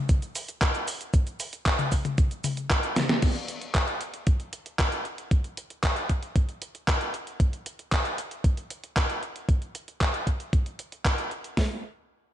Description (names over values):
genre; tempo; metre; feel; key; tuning
italo disco; 115 BPM; 4/4; straight; none; none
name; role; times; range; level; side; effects
clean 12-bit digital drum machine; drums; 0.1-11.7 s; hi-hat, kick drum, snare drum; -23 LUFS; equal; small room reverb
detuned 8-bit digital drum machine; drums; 0.1-11.5 s; cabasa, crash cymbal, handclaps, hi-hat, snare drum, toms; -28 LUFS; equal; small room reverb, gated reverb
room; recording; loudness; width
light reverb, digital ambience; nothing above 10.7 kHz; -25 LUFS; side -12 dB against mid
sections
0.0-3.2 A section; 3.2-11.6 B section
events
drum fill 3.0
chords
none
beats
0.09 0.62 | 1.14 1.66 2.18 2.70 | 3.23 3.75 4.27 4.79 | 5.31 5.83 6.36 6.88 | 7.40 7.92 8.44 8.96 | 9.49 10.01 10.53 11.05 | 11.57